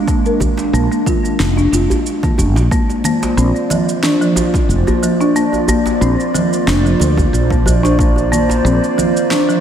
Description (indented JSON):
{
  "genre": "organic downtempo",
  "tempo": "91 BPM",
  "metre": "4/4",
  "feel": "swing 54% on 16ths",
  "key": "Bb mixolydian",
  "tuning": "A4 = 441 Hz",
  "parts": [
    { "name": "warbly tape-like pad", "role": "sustained chords", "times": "0.0-9.6 s", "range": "Ab3 to D5", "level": "-18 LUFS", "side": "right 1 dB", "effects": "chorus, built-in reverb, sidechain pumping" },
    { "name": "folk marimba with soft mallets", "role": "arpeggios", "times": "0.1-9.6 s", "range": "F3 to Bb4", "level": "-17 LUFS", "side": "left 1 dB", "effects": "tape echo" },
    { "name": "electronic kick drum", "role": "drums", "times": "0.1-8.1 s", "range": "none", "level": "-17 LUFS", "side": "equal", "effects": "overdrive, small room ambience" },
    { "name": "electronic shaker, congas and snare drum", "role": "drums", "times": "0.1-9.6 s", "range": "none", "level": "-23 LUFS", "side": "right 2 dB", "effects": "overdrive, small room ambience" },
    { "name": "djembe", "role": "percussion", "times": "0.4-9.1 s", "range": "none", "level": "-23 LUFS", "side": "right 1 dB", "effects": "none" },
    { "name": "woody fretless electric bass", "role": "bass", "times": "0.7-8.8 s", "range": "F1 to D2", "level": "-15 LUFS", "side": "equal", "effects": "sidechain pumping" }
  ],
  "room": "moderate cathedral reverb, RT60 5.0 s",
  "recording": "dreamy mix soaked in reverb",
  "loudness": "-12 LUFS",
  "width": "side -9 dB against mid",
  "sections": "0.0-2.7 A section; 2.7-9.6 B section",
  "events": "none",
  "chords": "0.0 Bb7; 2.7 Bb"
}